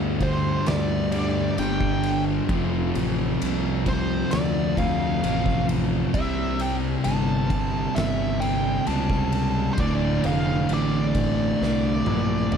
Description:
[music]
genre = stoner and doom metal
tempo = 66 BPM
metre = 4/4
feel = straight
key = unclear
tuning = A4 = 440 Hz
[part]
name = overdriven electric guitar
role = riff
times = 0.0-12.6 s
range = D2 to C4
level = -29 LUFS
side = right 1 dB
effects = none
[part]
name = thick fuzz guitar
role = riff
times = 0.0-12.6 s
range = D2 to C4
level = -28 LUFS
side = left 10 dB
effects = distortion
[part]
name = thick fuzz guitar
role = riff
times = 0.0-12.6 s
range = D2 to C4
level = -28 LUFS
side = right 9 dB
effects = distortion
[part]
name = fuzz fingered electric bass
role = bass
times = 0.0-12.6 s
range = D1 to D2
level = -28 LUFS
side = equal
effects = overdrive
[part]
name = fuzz lead guitar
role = melody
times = 0.2-12.6 s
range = C5 to A5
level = -29 LUFS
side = equal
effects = wah, distortion
[part]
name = oversized low-tuned drum kit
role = drums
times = 0.2-12.6 s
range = kick drum, ride cymbal, snare drum, toms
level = -30 LUFS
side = equal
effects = none
[sound]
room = light reverb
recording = dark, warm production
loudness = -21 LUFS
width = side -7 dB against mid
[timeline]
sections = 0.0-12.6 A section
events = drum fill 11.6-12.6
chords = 0.0 G5; 2.5 F; 6.1 C5; 9.8 Dm

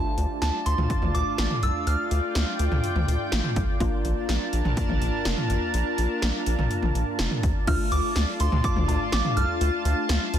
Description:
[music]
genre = synth-pop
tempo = 124 BPM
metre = 4/4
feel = straight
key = D minor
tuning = A4 = 438 Hz
[part]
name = soft synth bell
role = melody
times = 0.0-3.3, 7.7-10.1 s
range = A5 to F6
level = -30 LUFS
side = right 2 dB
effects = chorus, tape echo
[part]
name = funky polysynth comp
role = accompaniment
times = 0.0-10.4 s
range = A3 to F4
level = -31 LUFS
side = left 2 dB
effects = chorus
[part]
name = lush unison pad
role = sustained chords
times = 0.0-10.4 s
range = D4 to A5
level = -31 LUFS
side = right 1 dB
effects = chorus
[part]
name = rubbery square bass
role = bass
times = 0.0-10.4 s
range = F1 to D2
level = -25 LUFS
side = equal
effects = none
[part]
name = 80s electronic pad drums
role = drums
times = 0.2-10.4 s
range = cowbell, crash cymbal, hi-hat, kick drum, snare drum, toms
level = -28 LUFS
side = equal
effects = gated reverb on snare and toms, overdrive
[sound]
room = light reverb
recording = dense, heavily limited modern master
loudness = -22 LUFS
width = side -10 dB against mid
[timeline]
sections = 0.0-7.7 A section; 7.7-10.4 B section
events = none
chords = 0.0 Dm; 3.8 Bbmaj7; 7.4 Dm

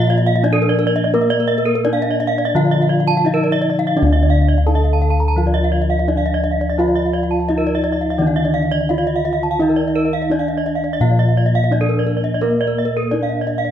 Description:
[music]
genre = Balinese gamelan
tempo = 85 BPM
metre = 4/4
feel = straight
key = D pelog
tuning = A4 = 441 Hz
[part]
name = gamelan-type bronze metallophone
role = melody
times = 0.0-13.7 s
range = Bb3 to A4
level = -23 LUFS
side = equal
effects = none
[part]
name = gamelan-type bronze metallophone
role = accompaniment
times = 0.0-13.7 s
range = D3 to Bb3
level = -25 LUFS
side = equal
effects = none
[part]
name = gamelan-type bronze metallophone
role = arpeggios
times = 0.0-13.7 s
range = Bb4 to Bb5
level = -22 LUFS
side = left 3 dB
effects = none
[part]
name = gamelan-type bossed gongs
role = bass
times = 0.0-13.7 s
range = D2 to Bb4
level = -18 LUFS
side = left 1 dB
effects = none
[part]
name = gamelan-type bronze metallophone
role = arpeggios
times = 0.1-13.7 s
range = A4 to A5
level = -22 LUFS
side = right 6 dB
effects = none
[sound]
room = light reverb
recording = close, detailed microphones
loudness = -14 LUFS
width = side -10 dB against mid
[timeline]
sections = 0.0-13.7 A section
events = none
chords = none

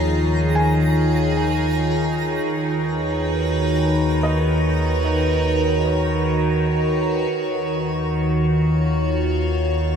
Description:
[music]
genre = ambient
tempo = free time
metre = none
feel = none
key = Eb minor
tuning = A4 = 441 Hz
[part]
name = evolving wavetable pad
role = sustained chords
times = 0.0-10.0 s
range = Eb3 to Db5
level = -20 LUFS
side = right 1 dB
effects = phaser, built-in reverb
[part]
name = felt-muted upright piano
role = arpeggios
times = 0.0-7.9 s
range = F3 to Ab5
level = -31 LUFS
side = equal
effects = tape echo
[part]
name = warm sub bass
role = bass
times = 0.0-10.0 s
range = Eb2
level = -24 LUFS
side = equal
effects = none
[part]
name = organ-like drone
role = drone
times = 0.0-10.0 s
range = Eb3 to Eb4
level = -26 LUFS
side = left 1 dB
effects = ensemble chorus, built-in reverb
[part]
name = twinkling granular texture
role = texture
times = 0.0-7.3 s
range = Bb5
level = -37 LUFS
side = equal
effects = built-in reverb
[sound]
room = wet huge ambient reverb, RT60 8.4 s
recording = none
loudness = -18 LUFS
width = side -7 dB against mid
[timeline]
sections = 0.0-7.3 A section; 7.3-10.0 B section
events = fade-out on felt piano 0.0-7.3; fade-out on synth texture 0.0-7.3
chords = 0.0 Bbm7/Eb; 2.4 Abm11/Eb; 7.3 Ebm9

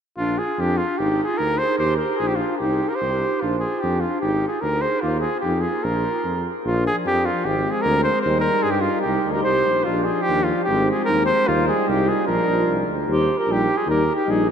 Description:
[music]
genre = balkan folk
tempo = 149 BPM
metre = 2/4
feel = straight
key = Bb mixolydian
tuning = A4 = 440 Hz
[part]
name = warm cornet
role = melody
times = 0.2-14.5 s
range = F4 to C5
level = -21 LUFS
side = equal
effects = none
[part]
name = mellow clarinet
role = second line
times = 0.2-6.5, 9.1-14.5 s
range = Bb3 to Ab4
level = -26 LUFS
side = right 1 dB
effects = none
[part]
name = warm tuba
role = bass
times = 0.2-14.5 s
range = Ab1 to G2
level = -25 LUFS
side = left 1 dB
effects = none
[part]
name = mellow trombone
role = accompaniment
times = 6.6-14.4 s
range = C4 to Eb4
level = -28 LUFS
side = left 6 dB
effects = none
[part]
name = mellow euphonium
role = accompaniment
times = 6.7-14.4 s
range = F3 to Ab3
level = -28 LUFS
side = right 4 dB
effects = none
[sound]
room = wet cathedral reverb, RT60 6.5 s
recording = in a vast, echoing space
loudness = -18 LUFS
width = side -7 dB against mid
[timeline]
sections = 0.2-6.7 A section; 6.7-13.1 A section; 13.1-14.5 B section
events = none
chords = 0.2 Bb5; 1.0 Abmaj9#11; 1.8 Eb5; 2.6 C5; 3.4 Bb5; 4.2 Abmaj9#11; 5.0 Ebadd9; 5.8 Bb5; 6.7 Bb; 7.5 Ab; 8.3 Eb; 9.1 Cm; 9.9 Bb; 10.7 Ab; 11.5 Eb; 12.3 Bb; 13.1 Eb

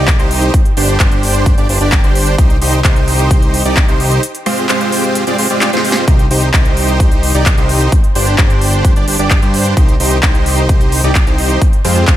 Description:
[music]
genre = EDM, festival progressive house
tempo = 130 BPM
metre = 4/4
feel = straight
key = C minor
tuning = A4 = 440 Hz
[part]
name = dense compressed supersaw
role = riff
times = 0.0-12.2 s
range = Ab3 to D5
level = -15 LUFS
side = right 1 dB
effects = sidechain pumping, tape echo
[part]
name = fat analog bass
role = bass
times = 0.0-12.2 s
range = G1 to G2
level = -15 LUFS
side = equal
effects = sidechain pumping
[part]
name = big-room dance drum kit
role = drums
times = 0.1-12.2 s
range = handclaps, hi-hat, rim click, snare drum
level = -18 LUFS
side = equal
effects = none
[part]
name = electronic kick drum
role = drums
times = 0.1-12.2 s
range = none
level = -11 LUFS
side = equal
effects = none
[sound]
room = digital ambience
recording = none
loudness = -9 LUFS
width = side -13 dB against mid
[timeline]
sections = 0.0-12.2 A section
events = break 4.2-6.1; drum fill 5.6-6.1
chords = 0.0 Cm; 0.5 Gsus4; 2.4 Cm; 4.2 Fmadd9; 6.1 Cm; 7.9 Gsus4; 9.8 Cm; 11.6 Fmadd9

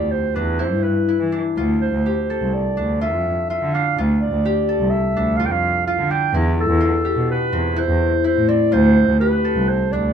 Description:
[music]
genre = contemporary instrumental, chamber music in an uneven meter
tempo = 125 BPM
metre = 5/4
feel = straight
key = D dorian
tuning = A4 = 440 Hz
[part]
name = mellow clarinet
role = melody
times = 0.0-10.1 s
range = A4 to G5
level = -22 LUFS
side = right 4 dB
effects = none
[part]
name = concert harp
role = arpeggios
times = 0.0-10.1 s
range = C4 to A4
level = -23 LUFS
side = left 6 dB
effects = none
[part]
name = dark cello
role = bass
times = 0.0-10.1 s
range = C2 to E3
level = -19 LUFS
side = right 1 dB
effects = none
[sound]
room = little or no reverb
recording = close, detailed microphones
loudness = -16 LUFS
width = side -8 dB against mid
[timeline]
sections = 0.0-10.1 A section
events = none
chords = 0.0 Em7; 1.6 Dm7; 6.3 Cmaj7/E; 8.7 Dm7

